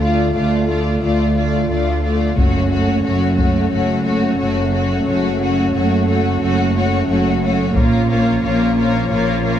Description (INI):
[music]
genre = cinematic, epic orchestral film score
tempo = 89 BPM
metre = 4/4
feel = straight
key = unclear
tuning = A4 = 438 Hz
[part]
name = warm studio violin section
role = melody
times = 0.0-9.6 s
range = C#5 to D5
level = -26 LUFS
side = left 5 dB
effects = none
[part]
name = rich symphonic violin section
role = second line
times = 0.0-9.6 s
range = F4 to F#4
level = -23 LUFS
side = left 4 dB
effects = none
[part]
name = rich symphonic viola section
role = accompaniment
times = 0.0-9.6 s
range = A3 to Bb3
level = -22 LUFS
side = equal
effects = none
[part]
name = mellow French horn section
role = sustained chords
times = 0.0-9.6 s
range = F3 to F4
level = -22 LUFS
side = left 1 dB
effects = none
[part]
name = rich symphonic cello section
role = bass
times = 0.0-9.6 s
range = D2 to Bb2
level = -21 LUFS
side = right 1 dB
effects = none
[part]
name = rich symphonic double bass section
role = bass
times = 0.0-9.6 s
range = F#1 to D2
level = -21 LUFS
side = right 3 dB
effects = none
[part]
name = taiko ensemble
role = drums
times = 2.4-9.1 s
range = none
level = -20 LUFS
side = left 1 dB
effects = none
[sound]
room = moderate concert hall reverb, RT60 2.2 s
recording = dark, warm production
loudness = -14 LUFS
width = side -10 dB against mid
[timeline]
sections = 0.0-9.6 A section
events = build-up 0.0-9.6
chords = 0.0 Dm; 2.4 F#m; 7.8 Bbm